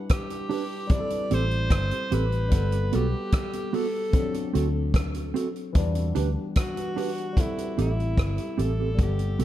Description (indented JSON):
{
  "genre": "lovers rock reggae",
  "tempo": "74 BPM",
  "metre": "4/4",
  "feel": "straight",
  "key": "A dorian",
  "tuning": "A4 = 439 Hz",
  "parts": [
    { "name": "barky tine electric piano", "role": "accompaniment", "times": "0.0-9.4 s", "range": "E3 to F#5", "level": "-33 LUFS", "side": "left 4 dB", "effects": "overdrive, phaser" },
    { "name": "clear alto saxophone", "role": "melody", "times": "0.1-9.4 s", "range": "E4 to D5", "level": "-32 LUFS", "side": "equal", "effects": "tape echo" },
    { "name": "vintage drum kit", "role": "drums", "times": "0.1-9.4 s", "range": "hi-hat, kick drum, rim click", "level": "-25 LUFS", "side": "equal", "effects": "none" },
    { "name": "mellow electric guitar", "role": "stabs", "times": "0.5-9.4 s", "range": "B3 to B4", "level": "-32 LUFS", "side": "right 6 dB", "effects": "tape echo" },
    { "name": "vintage muted fingered electric bass", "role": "bass", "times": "1.3-9.4 s", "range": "G1 to E2", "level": "-25 LUFS", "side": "equal", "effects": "none" }
  ],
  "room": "light reverb, small room ambience",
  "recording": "dark, warm production",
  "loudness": "-23 LUFS",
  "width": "side -13 dB against mid",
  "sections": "0.0-7.4 A section; 7.4-9.4 B section",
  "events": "none",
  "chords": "0.0 Em7; 0.9 Am7; 2.5 Gmaj9; 4.1 D7; 5.8 Em7; 7.4 Am7"
}